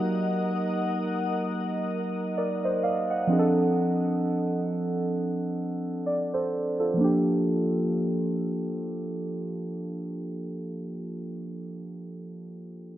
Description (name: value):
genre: R&B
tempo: 65 BPM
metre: 4/4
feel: swing 58% on 16ths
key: Bb major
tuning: A4 = 440 Hz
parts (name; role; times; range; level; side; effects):
- muted felt-like synth keys; accompaniment; 0.0-13.0 s; F3 to Gb5; -26 LUFS; right 1 dB; chorus
- glassy FM pad; sustained chords; 0.0-3.2 s; Bb4 to Eb6; -33 LUFS; left 2 dB; ensemble chorus, built-in reverb
- nylon-string guitar; arpeggios; 0.0-0.7 s; Bb3 to Gb4; -43 LUFS; left 3 dB; none
room: light reverb, digital ambience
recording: rough home demo mix, low-pass filter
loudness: -25 LUFS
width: side -13 dB against mid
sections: 0.0-7.0 A section; 7.0-10.7 B section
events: filter sweep 0.0-7.0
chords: 0.0 Ebm; 3.3 Dm7; 7.0 Bb6